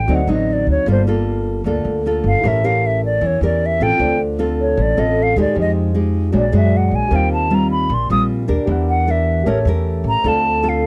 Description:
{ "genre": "bossa nova", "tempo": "154 BPM", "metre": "4/4", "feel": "straight", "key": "unclear", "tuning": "A4 = 441 Hz", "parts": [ { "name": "hollow concert flute", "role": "melody", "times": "0.0-10.9 s", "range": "C5 to Eb6", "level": "-21 LUFS", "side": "equal", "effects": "none" }, { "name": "nylon-string guitar", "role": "accompaniment", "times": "0.0-10.9 s", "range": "A2 to Bb4", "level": "-22 LUFS", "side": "equal", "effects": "none" }, { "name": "warm concert grand piano", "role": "accompaniment", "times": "0.0-10.9 s", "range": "E4 to Gb5", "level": "-31 LUFS", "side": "equal", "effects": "none" }, { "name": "upright bass", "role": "bass", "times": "0.0-10.9 s", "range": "G1 to F#2", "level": "-21 LUFS", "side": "equal", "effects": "none" } ], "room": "little or no reverb", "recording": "dry, close 1970s-style studio recording", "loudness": "-17 LUFS", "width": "mono", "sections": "0.0-10.9 A section", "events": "flute solo 0.0-10.9", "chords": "0.1 D7b9; 0.9 Gm9; 2.4 A7b9; 4.0 Dm7; 5.6 Fm9; 6.3 Bb7alt; 7.1 Eb69; 8.7 Em7b5; 9.5 A7b9; 10.2 Dm7", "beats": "0.08 0.48 | 0.87 1.26 1.65 2.04 | 2.43 2.82 3.21 3.60 | 4.00 4.39 4.78 5.17 | 5.56 5.95 6.34 6.73 | 7.12 7.51 7.90 8.29 | 8.68 9.07 9.46 9.85 | 10.24 10.63" }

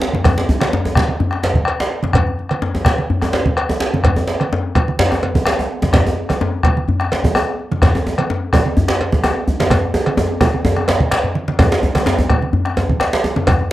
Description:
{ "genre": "west african traditional, West African drum ensemble", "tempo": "127 BPM", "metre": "4/4", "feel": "straight", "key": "none", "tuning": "none", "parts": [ { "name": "djembe", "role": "percussion", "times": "0.0-13.6 s", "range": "none", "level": "-20 LUFS", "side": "left 2 dB", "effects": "none" }, { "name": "djembe", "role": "percussion", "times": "0.0-13.6 s", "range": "none", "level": "-18 LUFS", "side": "right 1 dB", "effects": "none" }, { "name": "congas", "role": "percussion", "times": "0.1-13.6 s", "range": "none", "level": "-21 LUFS", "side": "right 3 dB", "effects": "none" }, { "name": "bombo", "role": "percussion", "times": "0.2-13.6 s", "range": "none", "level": "-18 LUFS", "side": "left 1 dB", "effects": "none" }, { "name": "cowbell", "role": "percussion", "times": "0.3-13.6 s", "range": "none", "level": "-24 LUFS", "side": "right 2 dB", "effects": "none" } ], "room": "little or no reverb", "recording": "dry, close 1970s-style studio recording", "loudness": "-14 LUFS", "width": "side -15 dB against mid", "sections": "0.0-11.6 A section; 11.6-13.7 B section", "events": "drum fill 9.7-11.6", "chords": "none", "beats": "| 0.25 0.73 1.20 1.68 | 2.15 2.62 3.10 3.57 | 4.04 4.52 4.99 5.46 | 5.93 6.41 6.88 7.35 | 7.82 8.29 8.77 9.24 | 9.71 10.18 10.65 11.12 | 11.59 12.06 12.53 13.00 | 13.47" }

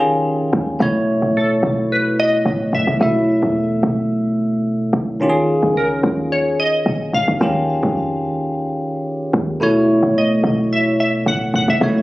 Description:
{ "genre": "amapiano", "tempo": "109 BPM", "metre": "4/4", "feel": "straight", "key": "unclear", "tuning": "A4 = 443 Hz", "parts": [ { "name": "barky tine electric piano", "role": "accompaniment", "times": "0.0-12.0 s", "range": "B2 to E5", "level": "-17 LUFS", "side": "equal", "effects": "phaser" }, { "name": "woody log drum bass", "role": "bass", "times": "0.5-12.0 s", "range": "F#1 to F2", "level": "-21 LUFS", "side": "equal", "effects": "none" }, { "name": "glassy wavetable pluck", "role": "melody", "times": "1.4-12.0 s", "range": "A4 to F#5", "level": "-20 LUFS", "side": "left 1 dB", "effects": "chorus, digital delay" } ], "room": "light reverb, digital ambience", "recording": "recorded on a phone in the room, club reverb, compression", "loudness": "-15 LUFS", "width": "side -18 dB against mid", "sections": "0.0-12.0 A section", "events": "none", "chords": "0.0 Eb9sus4; 0.8 B9sus4; 5.2 Eb9sus4; 9.6 B9sus4", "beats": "0.25 | 0.80 1.35 1.90 2.46 | 3.00 3.56 4.11 4.66 | 5.21 5.76 6.31 6.86 | 7.41 7.96 8.51 9.06 | 9.61 10.16 10.71 11.26 | 11.81" }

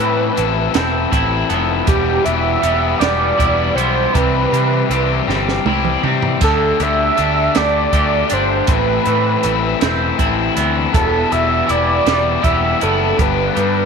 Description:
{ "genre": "indie rock", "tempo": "53 BPM (dotted quarters)", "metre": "6/8", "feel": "straight", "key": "unclear", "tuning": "A4 = 439 Hz", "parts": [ { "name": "octave-doubled lead", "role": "melody", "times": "0.0-13.9 s", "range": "G4 to E5", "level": "-18 LUFS", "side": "right 3 dB", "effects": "chorus" }, { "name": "crunchy overdriven guitar", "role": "riff", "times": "0.0-13.9 s", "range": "E2 to A4", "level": "-18 LUFS", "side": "left 14 dB", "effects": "none" }, { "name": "distorted electric guitar", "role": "riff", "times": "0.0-13.9 s", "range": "E2 to G4", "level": "-23 LUFS", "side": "right 15 dB", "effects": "distortion, lush chorus, tape echo" }, { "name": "fuzz picked electric bass", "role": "bass", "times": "0.0-13.9 s", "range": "E1 to C3", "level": "-21 LUFS", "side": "equal", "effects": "overdrive" }, { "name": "compact cocktail drum kit", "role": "drums", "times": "0.4-13.7 s", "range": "hi-hat, kick drum, snare drum, splash cymbal, toms", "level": "-20 LUFS", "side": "right 3 dB", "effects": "none" } ], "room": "studio reverb", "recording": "1960s-style stereo with parts hard left and right", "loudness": "-13 LUFS", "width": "side -6 dB against mid", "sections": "0.0-13.9 A section", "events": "drum fill 5.3-6.4", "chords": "0.0 Amadd9; 1.9 Em; 4.2 C; 6.4 Dsus4; 8.7 Amadd9; 10.9 Em; 13.2 G", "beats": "0.75 | 1.89 3.02 | 4.15 5.28 | 6.42 7.55 | 8.68 9.81 | 10.93 12.06 | 13.19" }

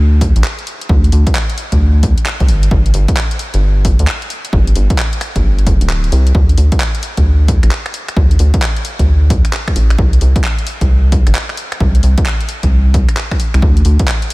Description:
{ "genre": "UK garage, two-step garage", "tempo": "132 BPM", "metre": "4/4", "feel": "swing 64% on 16ths", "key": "unclear", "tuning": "A4 = 442 Hz", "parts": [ { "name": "rubbery square bass", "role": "bass", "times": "0.0-14.0 s", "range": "D1 to D2", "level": "-10 LUFS", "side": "equal", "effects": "none" }, { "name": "electronic kick drum", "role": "drums", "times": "0.2-14.1 s", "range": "none", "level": "-14 LUFS", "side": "equal", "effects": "none" }, { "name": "garage drum kit", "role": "drums", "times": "0.2-14.3 s", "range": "finger snaps, handclaps, hi-hat", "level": "-22 LUFS", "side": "equal", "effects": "none" } ], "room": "little or no reverb", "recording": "none", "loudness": "-10 LUFS", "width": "side -22 dB against mid", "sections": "0.0-6.3 A section; 6.3-14.3 A section", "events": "drop 0.0-6.3, 6.3-14.3; kick drops out 5.9-6.3", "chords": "none", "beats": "0.44 | 0.89 1.35 1.80 2.26 | 2.71 3.17 3.62 4.08 | 4.53 4.99 5.44 5.89 | 6.35 6.80 7.26 7.71 | 8.17 8.62 9.08 9.53 | 9.98 10.44 10.89 11.35 | 11.80 12.26 12.71 13.17 | 13.62 14.08" }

